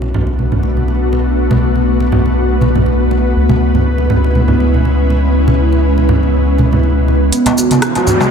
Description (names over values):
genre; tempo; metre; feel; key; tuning
afro house; 121 BPM; 4/4; swing 54% on 16ths; B dorian; A4 = 440 Hz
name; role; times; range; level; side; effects
ethereal airy pad; sustained chords; 0.1-8.3 s; G#3 to B4; -15 LUFS; left 1 dB; ensemble chorus, built-in reverb
round analog bass; bass; 0.0-7.3 s; B1 to C#2; -14 LUFS; equal; none
congas; percussion; 0.0-8.3 s; none; -17 LUFS; right 2 dB; none
marimba with soft mallets; arpeggios; 7.3-8.2 s; B3 to F#4; -17 LUFS; right 5 dB; low-pass filter, ping-pong delay
afro-pop drum kit; drums; 7.3-8.3 s; hi-hat, rim click, shaker, toms; -17 LUFS; equal; none
riser; sound effects; 7.6-8.3 s; none; -18 LUFS; left 2 dB; none
darbuka; percussion; 7.5-8.3 s; none; -20 LUFS; left 2 dB; none
room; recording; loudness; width
light reverb; none; -10 LUFS; side -7 dB against mid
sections
0.0-7.3 A section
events
riser 7.6-8.3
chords
0.0 Bm7; 3.4 C#m7; 7.3 Bm7